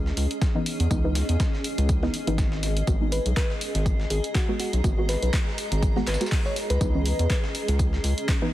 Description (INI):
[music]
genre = deep house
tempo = 122 BPM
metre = 4/4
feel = swing 56% on 16ths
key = unclear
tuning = A4 = 440 Hz
[part]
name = filtered dub chord stab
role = stabs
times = 0.0-8.5 s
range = E3 to F#4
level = -30 LUFS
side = equal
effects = chorus, sidechain pumping, tape echo
[part]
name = round analog bass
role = bass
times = 0.0-8.1 s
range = G#1 to E2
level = -24 LUFS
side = equal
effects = sidechain pumping
[part]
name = granular cloud pad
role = texture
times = 0.0-8.5 s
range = C#4 to A#5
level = -33 LUFS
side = equal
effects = built-in reverb, sidechain pumping
[part]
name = breakbeat sampler-style drum kit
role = drums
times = 0.1-8.4 s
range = hi-hat, snare drum, tambourine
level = -38 LUFS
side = equal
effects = overdrive, sidechain pumping on perc, high-pass filter on perc, high-pass filter on snare, sidechain pumping on hats, high-pass filter on hats, high-pass filter on room
[part]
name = punchy analog drum machine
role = drums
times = 0.2-8.4 s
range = handclaps, hi-hat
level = -33 LUFS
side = equal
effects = overdrive
[part]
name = electronic kick drum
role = drums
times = 0.4-8.4 s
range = none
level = -24 LUFS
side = equal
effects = overdrive
[part]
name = bell-like FM electric piano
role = melody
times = 3.1-7.4 s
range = F#4 to C#5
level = -32 LUFS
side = left 2 dB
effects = chorus, tape echo
[sound]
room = little or no reverb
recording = heavily compressed radio sound, multiband compression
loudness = -22 LUFS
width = side -14 dB against mid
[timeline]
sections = 0.0-8.5 A section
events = filter sweep on synth stab 0.0-8.5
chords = 0.0 C#m9; 2.9 G#m7; 6.6 C#m9